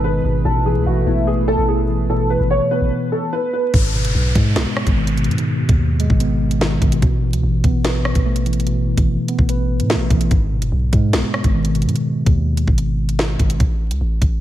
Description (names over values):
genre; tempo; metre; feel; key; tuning
hip hop, drill; 146 BPM; 4/4; half-time; G# phrygian; A4 = 440 Hz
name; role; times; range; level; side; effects
dark grand piano; melody; 0.0-3.7 s; E4 to C#5; -21 LUFS; equal; analog chorus, ping-pong delay
mellow tine electric piano; accompaniment; 0.0-13.6 s; G#2 to B4; -20 LUFS; equal; medium stereo tremolo, low-pass filter
warm analog pad; sustained chords; 0.0-2.9 s; G#3 to B4; -26 LUFS; right 1 dB; chorus
long sustained 808-style bass; bass; 0.0-14.4 s; F#1 to A2; -19 LUFS; equal; none
drill drum kit; drums; 3.7-14.3 s; hi-hat, kick drum, rim click, snare drum; -18 LUFS; equal; none
downlifter; sound effects; 3.7-7.0 s; none; -28 LUFS; left 1 dB; none
room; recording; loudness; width
light reverb; vinyl crackle; -15 LUFS; side -13 dB against mid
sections
0.0-3.7 A section; 3.7-14.4 B section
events
stop 2.9-3.7; filter sweep on tine electric piano 3.7-10.3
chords
0.4 Asus2; 3.7 G#m; 7.0 Asus2; 10.3 G#m; 13.6 N.C.